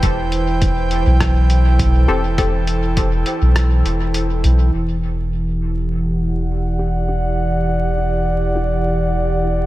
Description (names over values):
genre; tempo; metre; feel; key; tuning
ambient dub; 102 BPM; 4/4; swing 53% on 16ths; E minor; A4 = 439 Hz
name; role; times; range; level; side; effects
airy breathy pad; sustained chords; 0.0-9.7 s; E3 to G5; -21 LUFS; right 1 dB; chorus
soft dub sub bass; bass; 0.0-9.7 s; E1 to B1; -17 LUFS; equal; none
electronic kick drum; drums; 0.0-3.1 s; none; -20 LUFS; equal; none
lo-fi sampler-style drum kit; drums; 0.0-4.6 s; hi-hat, rim click; -27 LUFS; equal; low-pass filter on hats, low-pass filter on snare, dub echo
filtered dub chord stab; stabs; 2.1-2.5, 6.8-8.8 s; C4 to A4; -26 LUFS; left 3 dB; chorus, cassette tape, dub echo
room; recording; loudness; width
little or no reverb; vinyl crackle; -15 LUFS; side -16 dB against mid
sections
0.0-4.7 A section; 4.7-9.7 B section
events
kick drops out 3.6-4.7; filter sweep on analog synth pad 4.7-9.7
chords
0.0 Am7/E; 4.7 Em7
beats
| 0.03 0.62 1.21 1.79 | 2.38 2.97 3.56 4.15 | 4.74 5.32 5.91 6.50 | 7.09 7.68 8.27 8.85 | 9.44